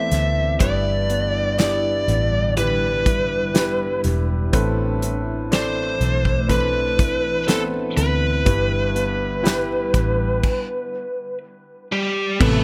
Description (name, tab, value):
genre	pop ballad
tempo	61 BPM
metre	4/4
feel	straight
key	unclear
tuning	A4 = 440 Hz
part	biting lead guitar	melody	0.0-12.6 s	G3 to E5	-25 LUFS	equal	overdrive, analog delay
part	warm grand piano	accompaniment	0.0-12.6 s	G2 to D5	-28 LUFS	equal	analog delay
part	glassy FM pad	sustained chords	0.0-12.6 s	D3 to E4	-34 LUFS	equal	ensemble chorus, built-in reverb, phaser
part	fingerpicked plugged-in steel-string acoustic guitar	arpeggios	0.0-12.6 s	G2 to E4	-33 LUFS	equal	analog delay
part	vintage muted fingered electric bass	bass	0.0-12.6 s	E1 to D2	-26 LUFS	equal	none
part	natural country drum kit	drums	0.1-12.6 s	crash cymbal, hi-hat, kick drum, snare drum	-23 LUFS	equal	none
part	warm chamber cello section	second line	12.4-12.6 s	E2 to B3	-24 LUFS	equal	none
room	small room ambience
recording	echo-heavy mix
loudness	-21 LUFS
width	mono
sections	0.0-12.4 A section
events	stop 10.4-12.4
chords	0.0 Amadd9; 0.6 G6; 4.5 Amadd9; 8.5 G6